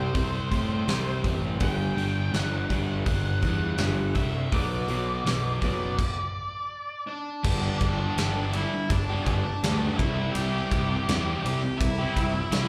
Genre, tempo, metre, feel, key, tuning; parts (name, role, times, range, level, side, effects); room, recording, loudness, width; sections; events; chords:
quiet-loud alternative rock; 82 BPM; 4/4; straight; A4 = 437 Hz
octave-fuzz lead guitar; melody; 0.0-12.7 s; D4 to G5; -35 LUFS; equal; distortion, slapback echo, analog delay
electric guitar through a small old amp; arpeggios; 0.0-6.0 s; G2 to C4; -37 LUFS; equal; slapback echo
crunchy overdriven guitar; riff; 0.0-12.7 s; G2 to G4; -34 LUFS; equal; slapback echo
fuzz picked electric bass; bass; 0.0-12.7 s; F#1 to A2; -31 LUFS; equal; overdrive
big rock drum kit; drums; 0.1-12.7 s; crash cymbal, hi-hat, kick drum, ride cymbal, snare drum; -32 LUFS; equal
small room ambience; live gig heard through the venue's PA, club reverb; -27 LUFS; mono
0.0-7.4 A section; 7.4-12.7 B section
stop 6.0-7.4
0.0 C5; 1.6 G5; 4.5 Bm; 7.4 G; 10.0 C